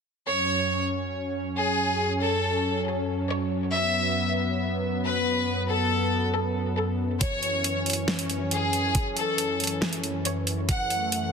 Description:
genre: heavy wobble dubstep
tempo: 138 BPM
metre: 4/4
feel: half-time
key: F# minor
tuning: A4 = 440 Hz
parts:
  - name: bright chamber violin section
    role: melody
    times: 0.3-11.3 s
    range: G#4 to F#5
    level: -27 LUFS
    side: left 1 dB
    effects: tape echo
  - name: lush unison pad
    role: sustained chords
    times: 0.3-11.3 s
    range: F#2 to C#4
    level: -28 LUFS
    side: equal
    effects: chorus, sidechain pumping
  - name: dubstep drum kit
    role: drums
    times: 7.2-11.2 s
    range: hi-hat, snare drum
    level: -28 LUFS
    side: right 1 dB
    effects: none
  - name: electronic kick drum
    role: drums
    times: 7.2-10.8 s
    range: none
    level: -26 LUFS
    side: equal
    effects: none
room: moderate plate reverb, RT60 2.5 s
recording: dense, heavily limited modern master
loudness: -24 LUFS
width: side -6 dB against mid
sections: 0.3-11.3 A section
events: none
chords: 0.3 F#5

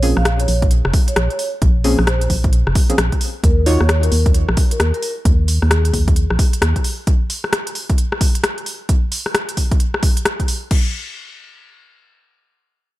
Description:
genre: UK garage, two-step garage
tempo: 132 BPM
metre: 4/4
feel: swing 63% on 16ths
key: unclear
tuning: A4 = 441 Hz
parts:
  - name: deep mellow chord stab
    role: stabs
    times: 0.0-3.8 s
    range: F3 to Db5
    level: -22 LUFS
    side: equal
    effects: chorus, ping-pong delay
  - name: organ-like FM bass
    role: bass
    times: 0.0-6.7 s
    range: F1 to Eb2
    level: -16 LUFS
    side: equal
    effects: none
  - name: garage drum kit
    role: drums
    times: 0.0-10.8 s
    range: crash cymbal, hi-hat, rim click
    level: -21 LUFS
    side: left 1 dB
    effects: none
  - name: vibraphone with soft mallets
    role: melody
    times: 0.2-5.9 s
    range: Ab4 to F5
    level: -26 LUFS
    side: equal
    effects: ping-pong delay
  - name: electronic kick drum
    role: drums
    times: 0.6-10.8 s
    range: none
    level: -16 LUFS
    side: equal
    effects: none
room: digital ambience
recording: none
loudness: -14 LUFS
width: side -16 dB against mid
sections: 0.0-10.7 A section; 10.7-13.0 B section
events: drop 0.0-10.7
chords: 0.0 Bbm9; 3.4 Eb5; 6.8 N.C.

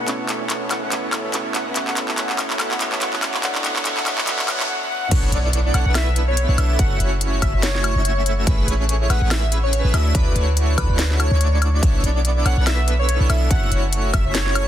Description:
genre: future bass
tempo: 143 BPM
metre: 4/4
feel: swing 56% on 16ths, half-time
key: unclear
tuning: A4 = 440 Hz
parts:
  - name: airy dreamy lead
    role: melody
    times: 0.0-14.7 s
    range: B4 to F#5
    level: -27 LUFS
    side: left 1 dB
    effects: chorus, sidechain pumping, digital delay
  - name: mellow tine electric piano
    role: accompaniment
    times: 0.0-5.1 s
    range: B2 to E5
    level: -33 LUFS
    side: right 4 dB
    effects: medium stereo tremolo, sidechain pumping, digital delay
  - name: soft supersaw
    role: riff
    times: 0.0-14.6 s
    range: A3 to E5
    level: -26 LUFS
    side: right 1 dB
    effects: cassette tape, sidechain pumping
  - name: riser and impact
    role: sound effects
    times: 1.7-6.8 s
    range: none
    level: -32 LUFS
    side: equal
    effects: none
  - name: trap drum kit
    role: drums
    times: 0.1-14.6 s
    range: crash cymbal, handclaps, hi-hat, snare drum, woodblock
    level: -24 LUFS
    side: left 1 dB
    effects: studio reverb
  - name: airy dreamy lead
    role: arpeggios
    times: 5.1-14.6 s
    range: B4 to E5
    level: -30 LUFS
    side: equal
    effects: chorus, sidechain pumping
  - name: warm 808-style bass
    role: bass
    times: 5.1-14.6 s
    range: F#1 to D2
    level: -19 LUFS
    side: equal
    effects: sidechain pumping
  - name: electronic kick drum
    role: drums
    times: 5.1-14.2 s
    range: none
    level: -19 LUFS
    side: equal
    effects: studio reverb
room: light reverb, digital ambience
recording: dense, heavily limited modern master, high-pass filter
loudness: -17 LUFS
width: side -11 dB against mid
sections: 0.0-5.1 A section; 5.1-14.7 B section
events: build-up 0.0-5.1; drum fill 0.0-4.7; filter sweep on supersaw synth 0.0-5.1; break 4.7-5.1; drop 5.1-14.7; impact 5.1-6.8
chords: 0.1 B9sus4; 3.2 Bm11; 6.8 F#m7; 8.5 Amaj9; 9.9 Dmaj9; 11.8 Bm11; 13.5 F#m7

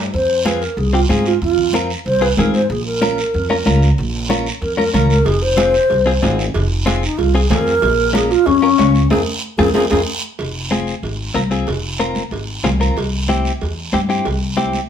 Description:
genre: latin, cumbia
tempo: 187 BPM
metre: 4/4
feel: straight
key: F minor, F harmonic minor from 10.4 s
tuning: A4 = 440 Hz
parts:
  - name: upright bass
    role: bass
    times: 0.0-14.8 s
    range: F1 to Ab2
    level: -19 LUFS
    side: equal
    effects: none
  - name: breathy mellow wooden-headed alto flute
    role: melody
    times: 0.1-10.0 s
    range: Db4 to C5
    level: -16 LUFS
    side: equal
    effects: none
  - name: congas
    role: percussion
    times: 0.1-14.9 s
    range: none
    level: -22 LUFS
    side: equal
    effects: none
  - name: guiro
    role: percussion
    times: 0.1-14.9 s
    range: none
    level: -28 LUFS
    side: right 4 dB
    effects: none
  - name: direct-recorded clean electric guitar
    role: accompaniment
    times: 0.5-14.8 s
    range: C4 to Db5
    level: -20 LUFS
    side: left 2 dB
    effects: none
  - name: cowbell and timbales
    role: percussion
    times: 5.3-14.4 s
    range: none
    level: -25 LUFS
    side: right 4 dB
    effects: none
room: moderate studio reverb, RT60 0.6 s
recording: band playing live in one room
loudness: -14 LUFS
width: side -8 dB against mid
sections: 0.1-10.4 A section; 10.4-14.9 B section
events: alto flute solo 0.1-10.4; band accent 9.1-10.4; drum fill 9.8-10.4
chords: 0.1 Fm; 2.7 Bbm; 5.3 Fm; 7.8 Bbm; 9.1 Fm; 13.0 C

